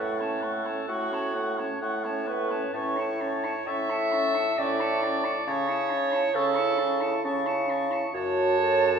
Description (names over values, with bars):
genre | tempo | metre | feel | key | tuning
classical, slow romantic movement for wind quintet | 66 BPM | 3/4 | rubato | unclear | A4 = 440 Hz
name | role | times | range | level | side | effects
silver concert flute | melody | 0.0-9.0 s | A5 to C#6 | -34 LUFS | left 2 dB | none
warm oboe | second line | 0.0-9.0 s | C#5 to C#6 | -34 LUFS | equal | none
clear clarinet | accompaniment | 0.0-9.0 s | F#4 to E5 | -29 LUFS | right 4 dB | none
warm French horn | accompaniment | 0.0-9.0 s | A3 to A4 | -35 LUFS | left 3 dB | none
warm bassoon | bass | 0.0-9.0 s | F#2 to C#3 | -28 LUFS | right 1 dB | none
room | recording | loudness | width
wet recital hall reverb, RT60 1.5 s | recorded in a church or concert hall, small room reverb | -24 LUFS | side -6 dB against mid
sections
0.0-9.0 A section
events
none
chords
0.0 F#m/A; 2.7 A; 5.5 A/C#; 8.1 F#m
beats
0.89 1.82 | 2.74 3.67 4.58 | 5.47 6.35 7.24 | 8.14